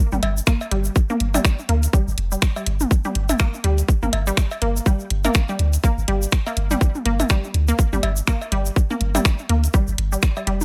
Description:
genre	minimal techno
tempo	123 BPM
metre	4/4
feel	swing 58% on 16ths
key	G minor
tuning	A4 = 440 Hz
part	resonant blip pluck	riff	0.1-10.6 s	G3 to Bb3	-29 LUFS	equal	chorus, sidechain pumping, tape echo
part	punchy sub bass	bass	0.1-10.6 s	F1 to D2	-23 LUFS	equal	sidechain pumping
part	egg shaker	percussion	0.1-10.6 s	none	-34 LUFS	equal	none
part	electronic toms and cowbell	percussion	0.1-10.6 s	none	-29 LUFS	equal	delay
part	garage drum kit	drums	0.2-10.6 s	finger snaps, hi-hat	-27 LUFS	equal	overdrive
part	electronic kick drum	drums	0.5-10.3 s	none	-20 LUFS	equal	overdrive
room	little or no reverb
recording	none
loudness	-20 LUFS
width	mono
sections	0.0-10.6 A section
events	none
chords	0.0 G5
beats	0.47 | 0.96 1.45 1.93 2.42 | 2.91 3.40 3.88 4.37 | 4.86 5.35 5.84 6.32 | 6.81 7.30 7.79 8.28 | 8.76 9.25 9.74 10.23

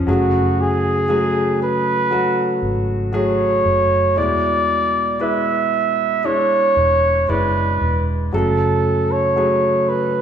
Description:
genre	pop ballad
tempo	58 BPM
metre	4/4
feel	straight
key	F# minor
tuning	A4 = 436 Hz
part	clear concert grand piano	accompaniment	0.0-10.2 s	B2 to D5	-20 LUFS	left 1 dB	none
part	vintage muted fingered electric bass	bass	0.0-10.2 s	E1 to G#1	-23 LUFS	equal	none
part	mellow flugelhorn	melody	0.1-10.2 s	F#4 to E5	-18 LUFS	right 2 dB	none
room	wet large studio reverb, RT60 1.4 s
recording	band playing live in one room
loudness	-15 LUFS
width	side -8 dB against mid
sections	0.0-10.2 A section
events	none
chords	0.1 F#madd9; 4.2 E7; 8.3 F#madd9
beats	| 0.08 1.10 2.12 3.14 | 4.17 5.21 6.25 7.29 | 8.33 9.38

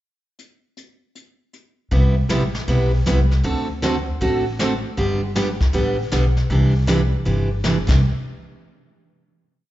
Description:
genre	country, western swing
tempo	157 BPM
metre	4/4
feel	swing 65% on 8ths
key	C major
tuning	A4 = 444 Hz
part	jazz brush drum kit	drums	0.4-7.9 s	brushed snare drum, crash cymbal, hi-hat, kick drum, snare drum	-24 LUFS	left 1 dB	none
part	picked steel-string acoustic guitar	accompaniment	1.9-8.0 s	C3 to A4	-21 LUFS	right 2 dB	slapback echo
part	upright bass	bass	1.9-8.0 s	G1 to D2	-19 LUFS	equal	none
room	small room ambience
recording	live gig heard through the venue's PA, club reverb, nothing above 7.6 kHz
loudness	-17 LUFS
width	side -15 dB against mid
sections	0.4-1.9 pickup bar; 1.9-8.0 A section; 8.0-9.5 final hit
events	none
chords	0.4 N.C.; 1.9 Cmaj7; 3.4 D7; 5.0 G; 6.5 Cadd9; 8.0 N.C.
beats	| 0.39 0.77 1.15 1.54 | 1.92 2.30 2.68 3.06 | 3.45 3.83 4.21 4.59 | 4.97 5.36 5.74 6.12 | 6.50 6.88 7.26 7.64

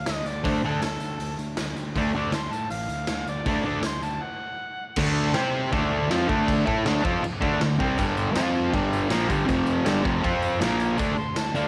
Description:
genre	garage rock duo or trio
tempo	159 BPM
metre	4/4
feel	straight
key	unclear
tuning	A4 = 441 Hz
part	overdriven harmonica	melody	0.0-5.0, 11.2-11.7 s	A4 to D6	-35 LUFS	equal	none
part	fuzz picked electric bass	bass	0.0-11.7 s	F1 to C3	-34 LUFS	equal	overdrive
part	raw garage drum kit	drums	0.1-11.5 s	crash cymbal, hi-hat, kick drum, snare drum	-32 LUFS	equal	none
part	tambourine	percussion	0.1-4.1, 8.0-11.6 s	none	-50 LUFS	equal	none
part	fuzz guitar	riff	0.4-11.7 s	F2 to C5	-26 LUFS	equal	distortion
room	light reverb, studio ambience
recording	none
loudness	-25 LUFS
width	mono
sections	0.0-5.0 A section; 5.0-11.0 B section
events	break 4.2-5.0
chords	0.0 D5; 5.3 C5; 5.7 D5; 8.0 G5; 8.4 F5; 8.7 G5; 9.5 F5; 9.9 G5; 10.2 F5; 10.6 Bb5; 11.0 D5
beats	0.07 | 0.45 0.82 1.20 1.58 | 1.96 2.33 2.71 3.09 | 3.46 3.84 4.22 4.59 | 4.97 5.35 5.72 6.10 | 6.48 6.86 7.23 7.61 | 7.98 8.36 8.74 9.11 | 9.49 9.87 10.24 10.62 | 10.99 11.37

